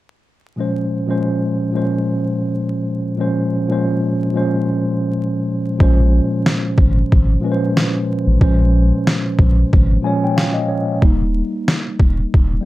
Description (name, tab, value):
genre	hip hop, boom-bap hip-hop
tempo	92 BPM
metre	4/4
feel	swing 56% on 16ths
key	Bb dorian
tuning	A4 = 442 Hz
part	mellow tine electric piano	accompaniment	0.6-12.7 s	Bb2 to Ab5	-18 LUFS	equal	medium stereo tremolo, cassette tape, high-pass filter, low-pass filter
part	saturated sub bass	bass	5.8-12.6 s	Eb1 to Bb1	-16 LUFS	equal	none
part	trip hop sampler-style drum kit	drums	5.8-12.5 s	kick drum, snare drum	-14 LUFS	equal	none
room	light reverb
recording	dark, warm production, vinyl crackle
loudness	-14 LUFS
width	side -17 dB against mid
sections	0.6-5.8 A section; 5.8-12.7 B section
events	hi-hats muted 5.8-12.7; tine electric piano fill 9.7-11.0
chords	0.6 Bbm7; 11.0 Eb